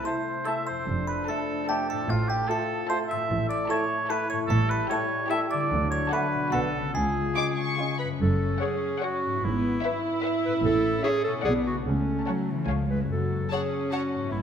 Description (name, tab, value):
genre	cinematic, playful, whimsical film cue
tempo	148 BPM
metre	3/4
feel	straight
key	F# minor from 3.3 s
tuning	A4 = 440 Hz
part	music box	melody	0.0-8.0 s	F5 to E6	-34 LUFS	right 4 dB	none
part	warm oboe	second line	0.0-8.0 s	F4 to E5	-30 LUFS	right 1 dB	none
part	mellow French horn section	sustained chords	0.0-8.0 s	F#3 to F4	-33 LUFS	left 4 dB	none
part	concert harp	arpeggios	0.0-14.4 s	F2 to E5	-34 LUFS	left 6 dB	none
part	rich studio violin section	melody	0.1-14.0 s	E5 to D6	-37 LUFS	left 4 dB	none
part	clear clarinet	second line	0.1-14.4 s	C#4 to B4	-32 LUFS	equal	none
part	hollow flute section	second line	0.1-7.9 s	F#5 to A5	-37 LUFS	left 2 dB	none
part	warm studio violin section	second line	0.1-14.0 s	E#4 to F#5	-36 LUFS	left 3 dB	none
part	mellow bassoon	accompaniment	0.1-7.9 s	G#3 to B3	-37 LUFS	right 2 dB	none
part	warm studio viola section	accompaniment	0.1-14.4 s	F#3 to F4	-32 LUFS	right 2 dB	none
part	dark studio double bass section	bass	0.9-14.4 s	F1 to D2	-32 LUFS	right 2 dB	none
part	warm studio cello section	bass	0.9-14.4 s	F2 to G#3	-31 LUFS	right 2 dB	none
room	wet scoring stage reverb, RT60 2.0 s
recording	none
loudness	-24 LUFS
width	side -8 dB against mid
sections	0.0-8.2 A section; 8.2-14.4 B section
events	none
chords	0.0 Am/C; 0.9 F6; 2.1 F/A; 3.3 A; 4.5 A7; 5.7 D; 6.5 Bm; 6.9 C#; 8.2 F#m; 9.4 E/G#; 10.6 A; 11.4 Bm; 11.9 F#m/C#; 12.7 C#; 13.1 F#m